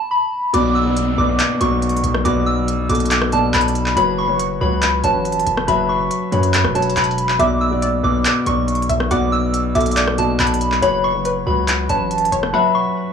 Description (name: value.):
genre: hip hop, trap.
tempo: 140 BPM.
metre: 4/4.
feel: half-time.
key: B minor.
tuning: A4 = 439 Hz.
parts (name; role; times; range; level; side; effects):
soft synth bell; melody; 0.0-13.1 s; A5 to E6; -20 LUFS; equal; chorus, phaser, analog delay.
felt-muted upright piano; accompaniment; 0.5-13.1 s; B2 to E5; -20 LUFS; left 1 dB; none.
distorted 808-style bass; bass; 0.5-12.5 s; E1 to F#2; -22 LUFS; equal; distortion, transformer saturation.
trap drum kit; drums; 0.5-12.5 s; handclaps, hi-hat, rim click; -22 LUFS; equal; none.
downlifter; sound effects; 0.5-4.0 s; none; -29 LUFS; right 2 dB; none.
warbly dusty pluck; second line; 7.4-13.1 s; B4 to F#5; -23 LUFS; left 1 dB; chorus, analog delay.
room: digital ambience.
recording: dry, gritty hardware recording, cassette tape, small room ambience.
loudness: -15 LUFS.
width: side -7 dB against mid.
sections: 0.5-13.1 A section.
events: swell 0.0-0.5; stop 0.0-0.5; drums muted 12.5-13.1.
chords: 0.0 N.C.; 0.5 Bm; 4.0 F#sus4; 7.4 Bm; 10.8 F#sus4.